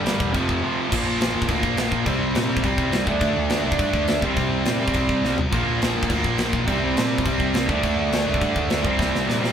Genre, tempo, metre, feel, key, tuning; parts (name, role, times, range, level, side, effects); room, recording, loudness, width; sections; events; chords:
punk rock; 208 BPM; 4/4; straight; A4 = 440 Hz
biting overdriven guitar; riff; 0.0-9.5 s; F2 to D4; -24 LUFS; right 5 dB
heavy high-gain guitar; riff; 0.0-9.5 s; F2 to D4; -28 LUFS; left 1 dB; distortion
overdriven electric guitar; riff; 0.0-9.5 s; F2 to D4; -27 LUFS; left 8 dB
fuzz picked electric bass; bass; 0.1-9.5 s; E1 to Bb2; -27 LUFS; equal; overdrive
tight metal drum kit; drums; 0.1-9.5 s; crash cymbal, kick drum, snare drum, toms; -25 LUFS; equal
moderate studio reverb, RT60 0.6 s; band playing live in one room; -19 LUFS; side -8 dB against mid
0.9-9.5 A section
drum fill 5.2, 9.0-9.5
0.3 F5; 0.9 Bb5; 2.1 C5; 3.1 D5; 4.2 C5; 5.5 Bb5; 6.7 C5; 7.7 D5; 8.8 C5